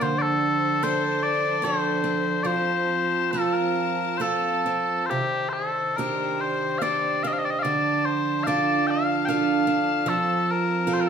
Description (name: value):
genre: celtic folk, Celtic slow air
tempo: 68-76 BPM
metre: 3/4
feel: rubato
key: unclear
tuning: A4 = 440 Hz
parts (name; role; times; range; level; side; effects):
- mellow small bagpipes; melody; 0.0-11.1 s; G4 to G5; -24 LUFS; left 2 dB; none
- picked steel-string acoustic guitar; accompaniment; 0.0-11.1 s; C3 to A4; -25 LUFS; right 4 dB; none
- clear studio string section; sustained chords; 0.0-11.1 s; Eb3 to A5; -32 LUFS; left 4 dB; none
room: moderate large studio reverb, RT60 1.1 s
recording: band playing live in one room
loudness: -21 LUFS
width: side -7 dB against mid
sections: 0.0-11.1 A section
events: none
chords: 0.0 Dm7; 2.5 F; 5.1 Cmadd9; 7.6 Dm; 10.1 F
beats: | 0.03 0.84 1.65 | 2.47 3.33 4.21 | 5.09 5.97 6.82 | 7.65 8.47 9.28 | 10.07 10.87